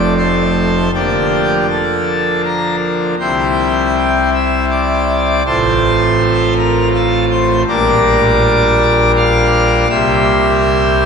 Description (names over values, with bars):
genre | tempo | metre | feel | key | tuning
classical, chorale-style piece for pipe organ | 80 BPM | 3/4 | rubato | F major | A4 = 440 Hz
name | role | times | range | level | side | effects
pipe organ, full organ | solo | 0.0-11.1 s | F1 to F6 | -11 LUFS | equal | none
room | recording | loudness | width
wet church reverb, RT60 3.7 s | minimal, uncompressed stereo recording | -11 LUFS | side -6 dB against mid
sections
0.0-11.1 A section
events
none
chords
0.0 F; 0.9 Bb/D; 3.2 C; 5.5 F/A; 7.7 Gm/Bb; 9.9 C7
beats
0.18 | 0.93 1.68 2.43 | 3.19 3.94 4.70 | 5.46 6.20 6.93 | 7.67 8.41 9.15 | 9.90 10.63